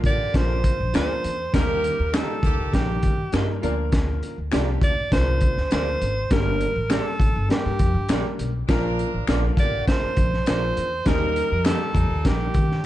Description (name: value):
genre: uptempo 1960s-style soul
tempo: 101 BPM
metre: 4/4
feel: straight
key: Bb major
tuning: A4 = 438 Hz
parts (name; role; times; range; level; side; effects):
- warm horn section; second line; 0.0-3.0, 8.7-12.5 s; Bb2 to Bb4; -33 LUFS; right 2 dB; none
- clear concert grand piano; accompaniment; 0.0-12.6 s; F3 to D5; -30 LUFS; left 1 dB; none
- upright bass; bass; 0.0-12.8 s; G1 to Eb3; -25 LUFS; equal; none
- crunchy breakbeat drum kit; drums; 0.0-12.8 s; hi-hat, kick drum, snare drum; -23 LUFS; equal; none
- breathy alto saxophone; melody; 0.1-12.9 s; G4 to D5; -26 LUFS; right 1 dB; none
- electric guitar through a small old amp; stabs; 0.9-11.8 s; F4 to Eb5; -34 LUFS; right 6 dB; none
- finger snaps; percussion; 0.9-11.8 s; none; -34 LUFS; left 5 dB; none
room: little or no reverb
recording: dark, warm production, nothing above 10.4 kHz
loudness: -20 LUFS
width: side -14 dB against mid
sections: 0.0-12.9 A section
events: none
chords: 0.0 Bb; 1.5 Eb; 3.6 Bb; 6.3 Gm; 8.7 Bb; 11.1 Eb